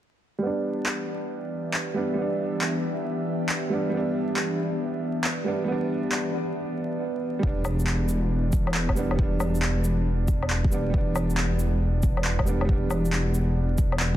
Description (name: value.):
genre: future garage.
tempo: 137 BPM.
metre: 4/4.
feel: swing 66% on 16ths.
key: E minor.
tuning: A4 = 442 Hz.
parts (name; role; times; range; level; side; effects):
clear upright piano; accompaniment; 0.4-14.2 s; G3 to D4; -29 LUFS; right 2 dB; sidechain pumping, low-pass filter, ping-pong delay.
airy breathy pad; sustained chords; 0.4-7.0 s; E3 to E5; -31 LUFS; left 1 dB; chorus, vintage 12-bit sampler grit, sidechain pumping.
electronic handclaps, shaker and woodblock; drums; 0.9-14.1 s; none; -30 LUFS; left 1 dB; studio reverb.
swelling detuned saw bass; bass; 7.4-14.2 s; E1; -24 LUFS; equal; tube saturation, sidechain pumping.
electronic kick drum; drums; 7.4-14.2 s; none; -24 LUFS; equal; studio reverb.
room: light reverb.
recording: dense, heavily limited modern master, vinyl crackle.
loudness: -23 LUFS.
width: side -12 dB against mid.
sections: 0.4-7.4 A section; 7.4-14.2 B section.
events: fade-in on analog synth pad 0.4-7.4; filter sweep on upright piano 0.4-7.4.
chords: 0.4 Em7.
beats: | 0.43 0.86 1.30 1.74 | 2.18 2.62 3.05 3.49 | 3.93 4.37 4.80 5.24 | 5.68 6.12 6.56 7.00 | 7.43 7.87 8.31 8.75 | 9.19 9.62 10.06 10.50 | 10.94 11.38 11.81 12.25 | 12.69 13.13 13.56 14.00.